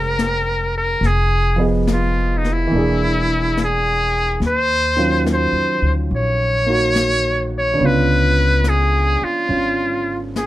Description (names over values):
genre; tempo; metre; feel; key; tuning
jazz ballad; 71 BPM; 4/4; swing 66% on 8ths; unclear; A4 = 438 Hz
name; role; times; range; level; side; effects
trumpet with metal mute; melody; 0.0-10.5 s; Eb4 to Db5; -18 LUFS; equal; none
warm grand piano; accompaniment; 0.0-10.5 s; D3 to Eb5; -22 LUFS; right 2 dB; none
upright bass; bass; 0.0-10.5 s; E1 to F2; -20 LUFS; equal; none
jazz brush drum kit; drums; 0.2-10.5 s; brushed snare drum, hi-hat, snare drum; -26 LUFS; left 3 dB; none
room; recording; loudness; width
little or no reverb; close, detailed microphones; -15 LUFS; side -15 dB against mid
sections
0.0-10.5 A section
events
none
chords
0.0 Bbm9; 1.0 Fm7b5; 2.7 E7#11; 4.4 Ebm9; 7.8 Db7b9